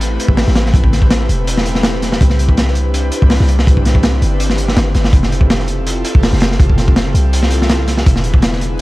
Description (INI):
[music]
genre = drum and bass, jungle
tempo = 164 BPM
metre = 4/4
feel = swing 54% on 16ths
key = A minor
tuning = A4 = 441 Hz
[part]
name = airy breathy pad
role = sustained chords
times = 0.0-8.8 s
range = A3 to B4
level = -21 LUFS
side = equal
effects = chorus
[part]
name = warm 808-style bass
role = bass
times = 0.0-8.8 s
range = E1 to C2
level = -15 LUFS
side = equal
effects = none
[part]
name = crunchy breakbeat drum kit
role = drums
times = 0.0-8.7 s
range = hi-hat, kick drum, snare drum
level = -13 LUFS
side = equal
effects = none
[sound]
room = small room ambience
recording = vinyl crackle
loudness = -10 LUFS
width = side -18 dB against mid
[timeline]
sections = 0.0-8.8 A section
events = none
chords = 0.0 Am7; 2.2 Cmaj7; 5.1 Fmaj7; 8.1 E7